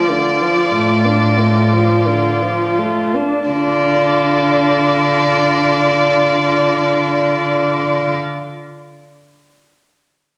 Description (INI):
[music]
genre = classical, slow romantic movement for string quartet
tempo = 40-48 BPM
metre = 4/4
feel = rubato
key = D minor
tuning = A4 = 435 Hz
[part]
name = warm violin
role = melody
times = 0.0-8.1 s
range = D5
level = -22 LUFS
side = equal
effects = none
[part]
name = dark violin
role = second line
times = 0.0-8.1 s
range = F4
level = -22 LUFS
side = equal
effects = none
[part]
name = dark viola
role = accompaniment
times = 0.0-8.1 s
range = D3 to D4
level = -19 LUFS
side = equal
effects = none
[part]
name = warm cello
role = bass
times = 0.7-8.1 s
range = A2 to D3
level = -22 LUFS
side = equal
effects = none
[sound]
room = wet scoring stage reverb, RT60 1.8 s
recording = none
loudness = -15 LUFS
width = mono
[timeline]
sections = 0.0-3.5 A section; 3.5-9.1 B section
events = slowing down 0.0-3.5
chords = 0.0 Dm